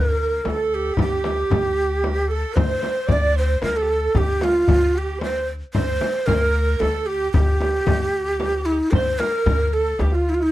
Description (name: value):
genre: Persian modal ensemble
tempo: 113 BPM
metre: 3/4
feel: straight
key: D dastgah shur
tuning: A4 = 440 Hz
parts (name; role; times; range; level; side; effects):
- breathy ney; melody; 0.0-10.5 s; Eb4+37c to D5; -21 LUFS; right 1 dB; none
- bright alto saxophone; second line; 0.0-10.5 s; Eb4+46c to D5; -28 LUFS; right 5 dB; none
- upright bass; bass; 0.0-10.5 s; D2; -23 LUFS; equal; none
- frame drum; percussion; 0.5-10.1 s; none; -25 LUFS; left 2 dB; none
- tombak; percussion; 0.5-10.1 s; none; -26 LUFS; left 1 dB; none
room: light reverb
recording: dark, warm production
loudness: -18 LUFS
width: side -15 dB against mid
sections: 0.0-10.5 A section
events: none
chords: none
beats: 0.45 | 0.98 1.51 2.04 | 2.57 3.10 3.63 | 4.16 4.69 5.22 | 5.75 6.28 6.81 | 7.34 7.87 8.40 | 8.93 9.46 9.99